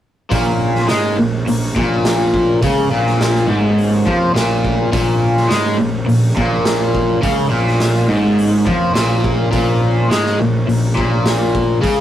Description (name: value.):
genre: psychedelic rock.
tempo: 104 BPM.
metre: 4/4.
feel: straight.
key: Bb minor.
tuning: A4 = 438 Hz.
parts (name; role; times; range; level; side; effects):
percussive tonewheel organ; sustained chords; 0.3-12.0 s; Db3 to Db5; -29 LUFS; right 1 dB; none.
overdriven semi-hollow guitar; riff; 0.3-12.0 s; Ab2 to Ab3; -15 LUFS; equal; phaser.
fuzz picked electric bass; bass; 0.3-12.0 s; Ab1 to Ab2; -22 LUFS; equal; overdrive.
raw garage drum kit; drums; 0.3-12.0 s; hi-hat, kick drum, snare drum; -21 LUFS; right 1 dB; none.
room: moderate studio ambience, RT60 0.5 s.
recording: rough rehearsal-room recording.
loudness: -13 LUFS.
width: side -11 dB against mid.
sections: 0.3-12.0 A section.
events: none.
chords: 0.3 Bbm.